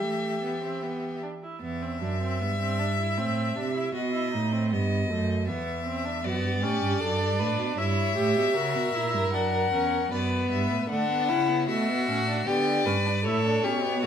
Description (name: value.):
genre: classical, baroque-style fugue for string quartet.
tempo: 77 BPM.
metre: 3/4.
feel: straight.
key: E minor, D major from 10.9 s.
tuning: A4 = 444 Hz.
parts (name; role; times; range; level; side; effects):
rich violin; melody; 0.0-14.1 s; C#5 to F#5; -30 LUFS; left 6 dB; none.
rich violin; second line; 0.0-1.2, 6.2-14.1 s; D4 to C#5; -29 LUFS; left 2 dB; none.
rich viola; accompaniment; 0.0-14.1 s; A3 to G4; -31 LUFS; right 2 dB; none.
rich cello; bass; 0.0-14.1 s; E2 to E3; -29 LUFS; right 3 dB; none.
room: wet stone room reverb, RT60 0.9 s.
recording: minimal, uncompressed stereo recording.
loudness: -24 LUFS.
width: side -8 dB against mid.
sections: 0.0-1.6 A section; 1.6-10.9 B section; 10.9-14.1 C section.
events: none.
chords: 0.0 Em; 3.2 Amadd11; 4.0 B; 5.5 E5; 6.2 Bm/F#; 7.8 C#m7b5/G; 8.6 F#; 10.1 Bm/F#; 10.9 D; 12.5 G; 13.2 A.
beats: 0.03 0.82 | 1.62 2.40 3.18 | 3.95 4.72 5.48 | 6.24 7.01 7.78 | 8.56 9.33 10.12 | 10.90 11.69 12.47 | 13.25 14.03.